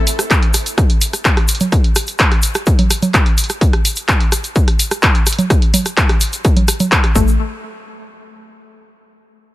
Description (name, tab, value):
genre	melodic techno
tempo	127 BPM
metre	4/4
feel	straight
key	unclear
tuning	A4 = 440 Hz
part	punchy analog drum machine	drums	0.1-7.1 s	congas, handclaps, hi-hat, rim click	-17 LUFS	right 1 dB	sidechain pumping on hats, sidechain pumping on perc
part	tube shaker	percussion	0.1-7.4 s	none	-22 LUFS	left 1 dB	none
part	electronic kick drum	drums	0.3-7.3 s	none	-13 LUFS	equal	overdrive
part	wide unison pluck	arpeggios	7.2-7.4 s	A3	-25 LUFS	left 5 dB	sidechain pumping, ping-pong delay
part	tight sequencer bass	bass	7.2-7.4 s	A1	-17 LUFS	equal	sidechain pumping
room	digital ambience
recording	none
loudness	-12 LUFS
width	side -17 dB against mid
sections	0.0-7.4 A section; 7.4-9.3 B section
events	none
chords	none